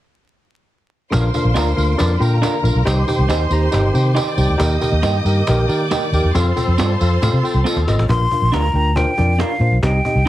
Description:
uptempo 1960s-style soul; 138 BPM; 4/4; straight; Bb major; A4 = 439 Hz
rich studio violin section; second line; 1.1-8.1 s; Bb4 to Eb6; -26 LUFS; equal
tine electric piano; accompaniment; 1.1-10.3 s; C4 to Bb5; -22 LUFS; left 1 dB
tonewheel organ; sustained chords; 1.1-8.1 s; D3 to A4; -27 LUFS; equal; chorus vibrato, slow rotary speaker
vintage muted fingered electric bass; bass; 1.1-10.3 s; G1 to Eb3; -16 LUFS; equal
cajon; drums; 1.1-10.1 s; -26 LUFS; equal
tambourine; percussion; 1.1-8.0 s; -31 LUFS; right 3 dB
electric guitar through a small old amp; stabs; 1.5-10.3 s; Bb3 to C5; -23 LUFS; right 5 dB
breathy mellow jazz flute; melody; 8.1-10.3 s; F5 to C6; -20 LUFS; left 1 dB; plate reverb
light reverb; heavily compressed radio sound, multiband compression, vinyl crackle; -14 LUFS; side -14 dB against mid
0.0-1.1 A section; 1.1-8.1 B section; 8.1-10.3 C section
drum fill 0.2-1.1, 7.7-8.1
0.0 N.C.; 1.1 Bb; 2.9 Cm; 4.6 Eb; 6.3 F; 8.1 Bb

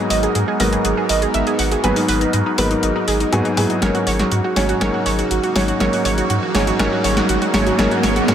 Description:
progressive house; 121 BPM; 4/4; straight; A4 = 441 Hz
evolving wavetable pad; sustained chords; 0.0-8.3 s; G#3 to A#4; -24 LUFS; equal; phaser, built-in reverb, vintage 12-bit sampler grit
analog pluck; arpeggios; 0.0-8.3 s; D#4 to F#5; -21 LUFS; right 4 dB; chorus, cassette tape, digital delay
felt-muted upright piano; stabs; 0.0-8.3 s; G#2 to C#5; -20 LUFS; left 2 dB; low-pass filter, digital delay
round analog bass; bass; 0.1-8.3 s; G#1 to G#2; -23 LUFS; equal
deep house drum kit; drums; 0.1-8.3 s; hi-hat, snare drum; -22 LUFS; left 1 dB; overdrive
riser; sound effects; 5.2-8.3 s; -26 LUFS; right 3 dB
moderate lush hall reverb, RT60 1.9 s, digital ambience; -15 LUFS; side -9 dB against mid
0.0-8.3 A section
build-up 0.0-8.3; drum fill 3.8-8.3
0.0 G#m7; 3.8 F#6/G#

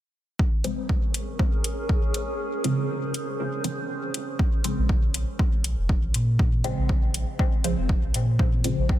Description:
dub techno; 120 BPM; 4/4; swing 56% on 16ths; Bb minor; A4 = 438 Hz
granular cloud pad; sustained chords; 1.2-4.4 s; Ab4 to C5; -34 LUFS; equal; built-in reverb, sidechain pumping
electronic kick drum; drums; 0.4-9.0 s; -24 LUFS; equal; overdrive, small room ambience
drifting glass-harmonics texture; texture; 1.1-4.4 s; Db4; -37 LUFS; right 3 dB; chorus, built-in reverb, sidechain pumping
filtered dub chord stab; stabs; 0.6-9.0 s; Db3 to C4; -30 LUFS; equal; phaser, sidechain pumping, dub echo
electronic hi-hat; drums; 0.6-8.8 s; -29 LUFS; left 2 dB; overdrive, small room ambience
soft dub sub bass; bass; 4.8-9.0 s; F1 to Bb2; -25 LUFS; equal; sidechain pumping
light reverb, digital ambience; dense, heavily limited modern master; -22 LUFS; side -13 dB against mid
0.4-4.4 A section; 4.4-9.0 B section
break 2.4-4.4
0.4 Bbm7

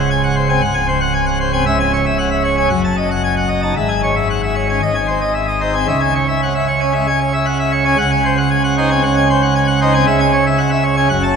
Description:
classical, organ toccata; 115 BPM; 4/4; straight; C# minor; A4 = 436 Hz
pipe organ, plenum; solo; 0.0-11.4 s; C#1 to A5; -13 LUFS; equal
wet church reverb, RT60 3.6 s; minimal, uncompressed stereo recording; -13 LUFS; side -6 dB against mid
0.0-11.4 A section
0.0 G#7/C#; 1.7 C#m; 2.7 D#dim/F#; 3.8 C#m/G#; 4.8 G#; 5.9 C#m; 8.0 G#7/C#; 10.1 C#m

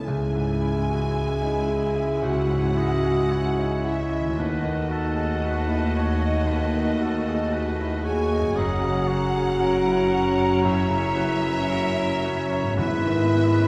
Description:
cinematic, emotional film score for orchestra; 57 BPM; 4/4; rubato; C# minor; A4 = 441 Hz
rich studio violin section; melody; 0.0-13.7 s; D#5 to G#5; -40 LUFS; equal
rich symphonic violin section; second line; 0.0-13.7 s; D#5 to G#5; -37 LUFS; equal
bright concert grand piano; accompaniment; 0.0-13.7 s; C#2 to E5; -31 LUFS; equal
clear symphonic viola section; accompaniment; 0.0-13.7 s; F#3 to F#4; -35 LUFS; equal
mellow French horn section; sustained chords; 0.0-13.7 s; D#4 to G#4; -29 LUFS; equal
concert harp; arpeggios; 0.0-13.7 s; F#2 to D#5; -35 LUFS; equal
bright clarinet; second line; 0.1-13.7 s; B4 to F#5; -38 LUFS; equal
concert flute; second line; 0.1-13.7 s; G#5 to B5; -36 LUFS; equal
rich symphonic cello section; bass; 0.1-13.7 s; C#2 to G#2; -32 LUFS; equal
rich symphonic double bass section; bass; 0.1-13.7 s; F#1 to D#2; -33 LUFS; equal
timpani; percussion; 0.1-1.7, 12.8-13.7 s; G#2 to C#3; -34 LUFS; equal
clear oboe; second line; 2.2-13.7 s; A4 to D#5; -37 LUFS; equal
wet scoring stage reverb, RT60 1.8 s; heard from further back in the room; -23 LUFS; mono
0.1-13.7 A section
0.1 C#madd9; 4.4 D#dim; 8.6 F#; 12.8 G#m

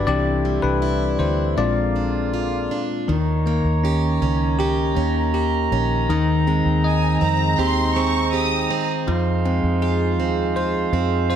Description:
pop ballad; 80 BPM; 4/4; straight; A4 = 440 Hz
bell-like tine electric piano; accompaniment; 0.0-11.4 s; Eb3 to Eb5; -22 LUFS; left 4 dB
mellow brass ensemble; sustained chords; 0.0-11.4 s; D3 to Bb5; -26 LUFS; right 3 dB
picked plugged-in steel-string acoustic guitar; arpeggios; 0.0-11.4 s; F2 to G4; -27 LUFS; right 8 dB
vintage muted fingered electric bass; bass; 0.0-11.4 s; Bb1 to F2; -23 LUFS; right 1 dB
warm studio violin section; second line; 6.8-8.9 s; Ab5 to Eb6; -25 LUFS; right 1 dB
light reverb, studio reverb; -18 LUFS; side -9 dB against mid
0.0-3.1 A section; 3.1-11.4 A section
tine electric piano solo 0.0-3.1
0.1 Cadd9; 1.6 Bb7; 3.1 Eb7; 6.1 Abmaj7/Eb; 9.1 Fm7

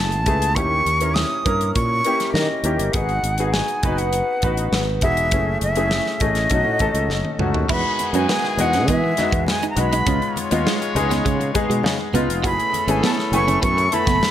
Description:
polished 1980s jazz-funk pop; 101 BPM; 4/4; straight; E major; A4 = 440 Hz
jazz flute; melody; 0.0-14.3 s; D#5 to D#6; -22 LUFS; right 1 dB
clear baby grand piano; accompaniment; 0.0-14.3 s; G#3 to G#5; -23 LUFS; left 2 dB; analog chorus
sustaining fretless electric bass; bass; 0.0-14.2 s; E1 to E3; -23 LUFS; right 1 dB
modern studio drum kit; drums; 0.1-14.3 s; crash cymbal, hi-hat, kick drum, snare drum, toms; -24 LUFS; equal
clear horn section; second line; 7.7-14.3 s; D#3 to C#5; -29 LUFS; left 2 dB
clean electric guitar; riff; 7.7-14.2 s; G#3 to F#4; -26 LUFS; right 6 dB; analog chorus
congas; percussion; 7.7-14.3 s; -34 LUFS; equal
mellow brass ensemble; sustained chords; 12.4-14.3 s; E4 to B5; -31 LUFS; equal
light reverb, small room ambience; -17 LUFS; side -11 dB against mid
0.0-7.7 A section; 7.7-14.3 B section
drum fill 7.1-7.7
0.0 F#m11; 0.6 D#7b9; 2.9 G#m7; 5.3 F#m7; 6.5 B9 (rootless); 7.7 Emaj7; 10.1 C#7; 12.4 F#m11

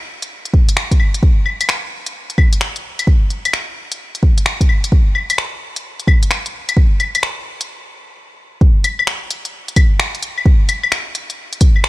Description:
future garage; 130 BPM; 4/4; swing 64% on 16ths
organic electronic drum kit; drums; 0.2-11.9 s; claves, finger snaps, hi-hat; -19 LUFS; left 2 dB; studio reverb
electronic kick drum; drums; 0.5-11.7 s; -11 LUFS; equal; studio reverb
digital ambience; -13 LUFS; side -18 dB against mid
0.0-8.6 A section; 8.6-11.9 B section
stop 7.7-8.6

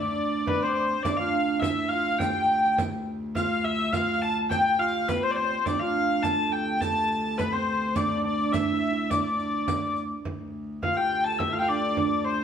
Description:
medieval dance; 104 BPM; 2/4; straight; D dorian; A4 = 440 Hz
rich hurdy-gurdy; melody; 0.0-12.4 s; B4 to A5; -26 LUFS; left 2 dB
concert harp; second line; 0.0-12.4 s; B3 to A4; -31 LUFS; right 6 dB
reedy alto recorder; second line; 0.0-12.4 s; B4 to A5; -34 LUFS; left 1 dB
warm viola da gamba; drone; 0.0-12.4 s; D2; -34 LUFS; left 2 dB
frame drum; percussion; 0.2-12.2 s; -35 LUFS; right 2 dB
riq; percussion; 1.1-10.1 s; -39 LUFS; right 5 dB
wet stone room reverb, RT60 1.1 s; band playing live in one room; -23 LUFS; side -8 dB against mid
0.0-1.1 A section; 1.1-10.3 A section; 10.3-12.4 B section

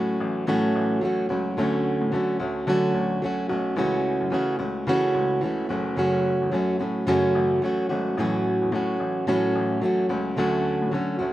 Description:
acoustic pop; 109 BPM; 4/4; swing 60% on 16ths; A major; A4 = 440 Hz
fingerpicked plugged-in steel-string acoustic guitar; accompaniment; 0.0-11.3 s; F#2 to F#4; -22 LUFS; right 1 dB; slapback echo
clear baby grand piano; bass; 0.0-11.3 s; F#1 to D3; -31 LUFS; left 3 dB
little or no reverb; recorded outdoors, with no room sound; -22 LUFS; side -14 dB against mid
0.0-11.3 A section
0.0 A6; 1.6 Dmaj7; 3.8 A6/C#; 5.7 F#m; 8.2 A6; 10.4 Dmaj7

